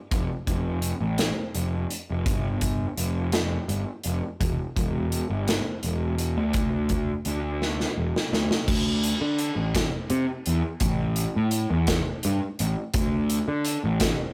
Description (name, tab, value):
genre	quiet-loud alternative rock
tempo	56 BPM (dotted quarters)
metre	6/8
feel	straight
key	unclear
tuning	A4 = 440 Hz
part	fuzz picked electric bass	bass	0.1-14.1 s	E1 to D3	-28 LUFS	equal	overdrive
part	big rock drum kit	drums	0.1-14.2 s	crash cymbal, hi-hat, kick drum, snare drum	-30 LUFS	equal	none
room	light reverb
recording	rough rehearsal-room recording, warm saturation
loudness	-26 LUFS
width	mono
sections	0.0-8.7 A section; 8.7-14.3 B section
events	drum fill 7.6-8.7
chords	none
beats	| 0.12 1.19 | 2.26 3.33 | 4.40 5.47 | 6.54 7.61 | 8.68 9.74 | 10.81 11.87 | 12.94 14.00